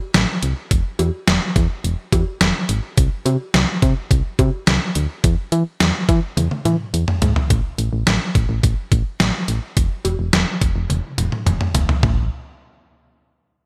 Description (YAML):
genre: synth-pop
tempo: 106 BPM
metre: 4/4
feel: straight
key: A minor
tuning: A4 = 444 Hz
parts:
  - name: solid FM bass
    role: bass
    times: 0.1-12.3 s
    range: E1 to E3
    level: -22 LUFS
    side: equal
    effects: none
  - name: detuned 8-bit digital drum machine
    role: drums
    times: 0.1-12.2 s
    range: cowbell, hi-hat, kick drum, snare drum, toms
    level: -20 LUFS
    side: equal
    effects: gated reverb
room: little or no reverb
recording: bright 1980s-style digital production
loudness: -19 LUFS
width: mono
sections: 0.0-7.5 A section; 7.5-12.0 B section; 12.0-13.7 C section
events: drum fill 6.4-7.5, 10.9-12.0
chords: none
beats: 0.14 | 0.71 1.28 1.84 2.41 | 2.98 3.54 4.11 4.67 | 5.24 5.80 6.37 6.94 | 7.50 8.07 8.63 9.20 | 9.77 10.33 10.90 11.47 | 12.03